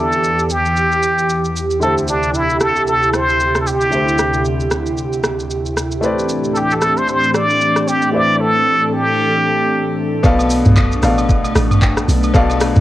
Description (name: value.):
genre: amapiano.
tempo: 114 BPM.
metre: 4/4.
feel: swing 58% on 16ths.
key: A minor.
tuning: A4 = 441 Hz.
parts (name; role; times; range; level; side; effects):
trumpet with plunger mute; melody; 0.0-10.0 s; D4 to D5; -16 LUFS; equal; low-pass filter, cassette tape, tape echo.
clear baby grand piano; accompaniment; 0.0-12.8 s; B2 to F5; -22 LUFS; left 2 dB; low-pass filter, cassette tape.
airy breathy pad; sustained chords; 0.0-12.8 s; D2 to A4; -19 LUFS; right 1 dB; chorus, sidechain pumping, low-pass filter, cassette tape.
smooth R&B drum kit; drums; 0.1-12.8 s; handclaps, hi-hat, kick drum, rim click, shaker, toms; -18 LUFS; equal; cassette tape.
deep log drum bass; bass; 10.2-12.8 s; A1 to B1; -17 LUFS; equal; none.
agogo bells and woodblock; percussion; 10.4-12.6 s; none; -27 LUFS; right 1 dB; none.
room: moderate spring reverb, RT60 1.6 s, digital ambience.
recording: home recording on cassette.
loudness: -13 LUFS.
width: side -14 dB against mid.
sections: 0.0-10.2 A section; 10.2-12.8 B section.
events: drop 10.2-12.8.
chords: 0.0 Em7; 1.8 D9sus4; 6.0 Am11; 10.2 Bm7b5.